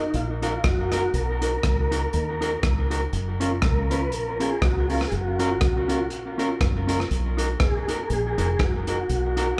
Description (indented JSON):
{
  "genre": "ska",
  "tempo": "121 BPM",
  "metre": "4/4",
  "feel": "swing 56% on 8ths",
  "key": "unclear",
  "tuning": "A4 = 436 Hz",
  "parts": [
    { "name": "tonewheel organ", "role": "melody", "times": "0.0-9.6 s", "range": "D#4 to B4", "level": "-31 LUFS", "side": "equal", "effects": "chorus vibrato, fast rotary speaker, tape echo, slapback echo" },
    { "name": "mellow electric guitar", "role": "accompaniment", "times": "0.0-9.5 s", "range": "C#4 to A#4", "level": "-30 LUFS", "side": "equal", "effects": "tape echo, slapback echo" },
    { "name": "deep dub fingered electric bass", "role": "bass", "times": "0.0-9.5 s", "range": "E#1 to D#2", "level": "-29 LUFS", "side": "equal", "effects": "none" },
    { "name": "crunchy breakbeat drum kit", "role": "drums", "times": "0.1-9.5 s", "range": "hi-hat, kick drum, rim click", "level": "-28 LUFS", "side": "equal", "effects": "none" }
  ],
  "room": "light reverb, studio reverb",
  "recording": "live gig heard through the venue's PA, club ambience",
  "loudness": "-24 LUFS",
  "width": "mono",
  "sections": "0.0-9.6 A section",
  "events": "none",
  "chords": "0.0 Bmaj7; 3.1 F#maj7; 7.1 Bmaj7",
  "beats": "0.14 0.64 | 1.14 1.64 2.13 2.63 | 3.13 3.63 4.12 4.62 | 5.12 5.62 6.11 6.61 | 7.11 7.60 8.10 8.59 | 9.09 9.59"
}